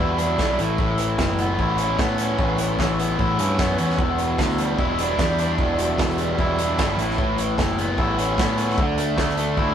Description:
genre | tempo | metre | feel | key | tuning
indie rock | 150 BPM | 4/4 | straight | unclear | A4 = 440 Hz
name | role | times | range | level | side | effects
raw garage guitar | riff | 0.0-9.7 s | E2 to E4 | -22 LUFS | equal | overdrive
growling picked electric bass | bass | 0.0-9.7 s | E1 to A2 | -25 LUFS | left 1 dB | overdrive
loose indie drum kit | drums | 0.2-9.7 s | hi-hat, kick drum, snare drum | -25 LUFS | equal | none
room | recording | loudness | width
moderate stone room reverb, RT60 1.3 s | rough rehearsal-room recording | -19 LUFS | side -9 dB against mid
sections
0.0-9.7 A section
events
none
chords
0.0 Em7; 0.6 Aadd9; 4.0 Em7; 7.0 Aadd9; 8.8 Dsus2

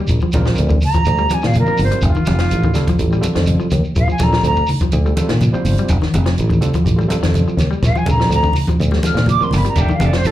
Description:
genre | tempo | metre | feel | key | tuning
afrobeat | 124 BPM | 4/4 | straight | unclear | A4 = 441 Hz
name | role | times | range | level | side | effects
electric guitar at the edge of break-up | arpeggios | 0.0-10.3 s | D3 to G3 | -23 LUFS | left 4 dB | none
fingered electric bass | bass | 0.1-10.3 s | F1 to Bb2 | -17 LUFS | equal | none
compact cocktail drum kit | drums | 0.1-10.3 s | hi-hat, kick drum, snare drum | -21 LUFS | equal | none
shekere | percussion | 0.1-10.3 s | none | -27 LUFS | right 1 dB | none
congas | percussion | 0.2-10.1 s | none | -20 LUFS | right 1 dB | none
overdriven tine electric piano | accompaniment | 0.3-9.8 s | G3 to C5 | -25 LUFS | right 3 dB | fast tremolo, slapback echo
silver concert flute | melody | 0.8-4.7, 7.9-10.3 s | F4 to F6 | -19 LUFS | right 1 dB | slapback echo
semi-hollow electric guitar | stabs | 9.8-10.2 s | Eb3 to G4 | -23 LUFS | right 4 dB | slapback echo
room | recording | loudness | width
light reverb | live gig heard through the venue's PA, club reverb | -13 LUFS | side -13 dB against mid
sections
0.0-10.3 A section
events
flute solo 0.0-10.3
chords
0.1 Bb69; 2.0 F9; 4.0 Bb69; 5.9 F9; 7.8 Bb69; 9.8 F13

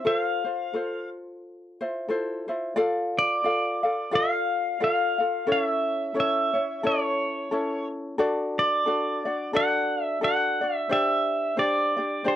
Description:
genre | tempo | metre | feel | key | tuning
Hawaiian | 89 BPM | 4/4 | swing 58% on 8ths | D minor | A4 = 443 Hz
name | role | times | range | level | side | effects
pedal steel guitar | melody | 0.0-12.4 s | C5 to F#5 | -25 LUFS | equal | none
ukulele | accompaniment | 0.0-12.4 s | C#4 to F5 | -27 LUFS | left 1 dB | none
room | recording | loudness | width
light reverb | dry, close 1970s-style studio recording | -23 LUFS | side -11 dB against mid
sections
0.0-2.8 A section; 2.8-12.4 B section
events
none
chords
0.1 Fmaj7; 2.8 Dm; 5.5 A; 8.2 D; 10.9 Gsus4

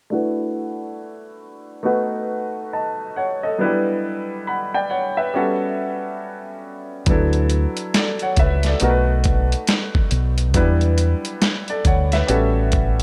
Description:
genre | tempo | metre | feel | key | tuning
R&B, neo-soul | 69 BPM | 4/4 | swing 62% on 16ths | D major | A4 = 444 Hz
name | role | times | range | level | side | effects
clear grand piano | accompaniment | 0.1-13.0 s | F#3 to B5 | -24 LUFS | equal | low-pass filter
deep dub fingered electric bass | bass | 7.1-13.0 s | A1 to E2 | -21 LUFS | equal | none
dusty soul sampler-style drum kit | drums | 7.1-13.0 s | hi-hat, kick drum, snare drum | -22 LUFS | equal | overdrive
room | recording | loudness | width
little or no reverb | none | -20 LUFS | mono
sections
0.1-7.1 A section; 7.1-13.0 B section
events
filter sweep on grand piano 0.1-7.1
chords
0.1 D69; 1.8 B7; 3.6 Em7; 5.3 A13; 7.1 D69; 8.8 B7; 10.5 Em7; 12.3 A13

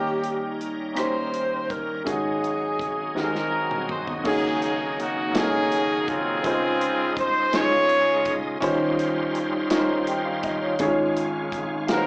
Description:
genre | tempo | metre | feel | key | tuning
slow gospel | 55 BPM (dotted quarters) | 6/8 | straight | Db major | A4 = 440 Hz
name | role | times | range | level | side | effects
breathy alto saxophone | melody | 0.0-3.5 s | G4 to C5 | -27 LUFS | equal | plate reverb
warm concert grand piano | accompaniment | 0.0-12.1 s | Ab1 to C6 | -25 LUFS | equal | slapback echo
bright tonewheel organ | sustained chords | 0.0-12.1 s | Db3 to Ab5 | -30 LUFS | equal | slow rotary speaker, overdrive, chorus vibrato
modern studio drum kit | drums | 0.2-12.1 s | crash cymbal, hi-hat, kick drum, rim click, snare drum, toms | -31 LUFS | equal | none
clear horn section | melody | 3.2-8.6, 11.9-12.1 s | C4 to Db5 | -22 LUFS | equal | none
room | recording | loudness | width
moderate club reverb, RT60 0.5 s | live gig heard through the venue's PA, club ambience, small speaker sound | -21 LUFS | side -37 dB against mid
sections
0.0-4.3 A section; 4.3-12.1 B section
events
drum fill 3.2-4.3; tonewheel organ fill 3.2-4.3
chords
0.0 Eb7; 2.1 Ab7sus4; 3.2 Ab7; 4.3 Ab9sus4; 6.4 Dbmaj9; 8.6 Eb13; 10.8 Db/Ab

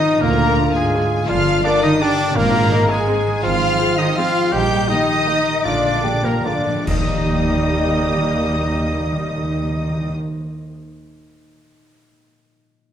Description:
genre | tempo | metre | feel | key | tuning
classical, orchestral ballroom waltz | 135-181 BPM | 3/4 | rubato | Eb major | A4 = 440 Hz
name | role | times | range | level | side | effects
warm symphonic violin section | melody | 0.0-10.1 s | Ab5 to G6 | -27 LUFS | left 4 dB | none
clear oboe | second line | 0.0-10.1 s | Ab4 to G5 | -27 LUFS | right 2 dB | none
flute section | second line | 0.0-10.1 s | Ab4 to G5 | -26 LUFS | left 3 dB | none
warm symphonic violin section | second line | 0.0-10.1 s | Ab4 to G5 | -28 LUFS | left 3 dB | none
mellow bassoon | accompaniment | 0.0-10.1 s | G3 to G4 | -25 LUFS | equal | none
warm French horn section | sustained chords | 0.0-10.1 s | Ab3 to G4 | -26 LUFS | left 3 dB | none
concert harp | arpeggios | 0.0-10.8 s | G2 to Eb5 | -28 LUFS | left 6 dB | none
warm trumpet | stabs | 0.0-10.1 s | Ab3 to G4 | -24 LUFS | right 1 dB | none
rich symphonic cello section | bass | 0.0-10.1 s | Ab2 to G3 | -25 LUFS | right 3 dB | none
rich studio double bass section | bass | 0.2-10.1 s | G1 to Eb2 | -24 LUFS | right 3 dB | none
warm symphonic viola section | accompaniment | 0.6-10.1 s | Bb3 to Bb4 | -28 LUFS | equal | none
cymbal swell, clash cymbals and concert bass drum | percussion | 4.5-7.7 s | none | -28 LUFS | equal | none
timpani | percussion | 5.7-10.2 s | Bb2 to Eb3 | -26 LUFS | equal | none
room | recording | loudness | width
wet recital hall reverb, RT60 1.6 s | none | -15 LUFS | side -9 dB against mid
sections
0.0-6.9 A section; 6.9-9.4 B section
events
slowing down 4.0-6.9; timpani fill 5.7-6.9; band accent 6.9-7.3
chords
0.2 Ddim; 1.3 Gm7; 2.4 Ab; 3.4 Fm/Ab; 4.5 Eb/Bb; 5.7 Bb7; 6.9 Eb

